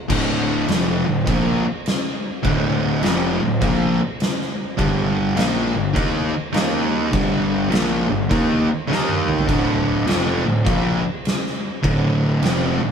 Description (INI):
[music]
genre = stoner and doom metal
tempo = 102 BPM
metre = 4/4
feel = swing 65% on 8ths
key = D minor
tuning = A4 = 440 Hz
[part]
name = fuzz guitar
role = riff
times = 0.1-12.9 s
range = D2 to Eb4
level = -19 LUFS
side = equal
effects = distortion
[part]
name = fuzz picked electric bass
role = bass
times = 0.1-12.9 s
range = D1 to Eb2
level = -25 LUFS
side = left 1 dB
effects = overdrive
[part]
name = oversized low-tuned drum kit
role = drums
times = 0.1-12.6 s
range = crash cymbal, kick drum, snare drum, toms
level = -23 LUFS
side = equal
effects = none
[sound]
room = light reverb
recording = band playing live in one room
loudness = -17 LUFS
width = side -7 dB against mid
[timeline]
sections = 0.1-12.9 A section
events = drum fill 8.9-9.5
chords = 0.1 Dm; 4.8 G5; 6.5 Eb5; 7.1 G5; 8.9 Eb5; 9.5 Dm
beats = | 0.10 0.69 1.27 1.86 | 2.45 3.03 3.62 4.21 | 4.79 5.38 5.96 6.55 | 7.14 7.72 8.31 8.90 | 9.48 10.07 10.66 11.25 | 11.84 12.43